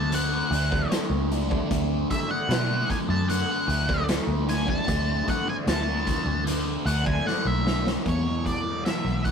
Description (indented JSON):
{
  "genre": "psychedelic rock",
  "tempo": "76 BPM",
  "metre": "4/4",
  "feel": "straight",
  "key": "D major",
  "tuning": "A4 = 440 Hz",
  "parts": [
    { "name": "octave-fuzz lead guitar", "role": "melody", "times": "0.0-9.3 s", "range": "C#5 to A5", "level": "-29 LUFS", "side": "left 1 dB", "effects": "distortion" },
    { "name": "fuzz guitar", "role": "riff", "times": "0.0-9.3 s", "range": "E2 to D4", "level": "-28 LUFS", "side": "left 1 dB", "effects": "distortion, phaser" },
    { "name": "vintage muted picked electric bass", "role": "bass", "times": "0.0-9.3 s", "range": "B1 to B2", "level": "-27 LUFS", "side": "right 1 dB", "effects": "none" },
    { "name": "raw garage drum kit", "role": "drums", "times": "0.1-9.3 s", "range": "hi-hat, kick drum, snare drum", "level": "-28 LUFS", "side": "equal", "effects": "none" }
  ],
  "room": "light reverb",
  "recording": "rough rehearsal-room recording, tube saturation",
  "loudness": "-23 LUFS",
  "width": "side -7 dB against mid",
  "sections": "0.0-8.1 A section; 8.1-9.3 B section",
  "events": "lead electric guitar solo 0.0-8.1; drum fill 7.3-8.1",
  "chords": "0.0 D; 8.1 E5",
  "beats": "0.12 0.91 | 1.70 2.50 3.29 4.08 | 4.88 5.67 6.47 7.26 | 8.06 8.85"
}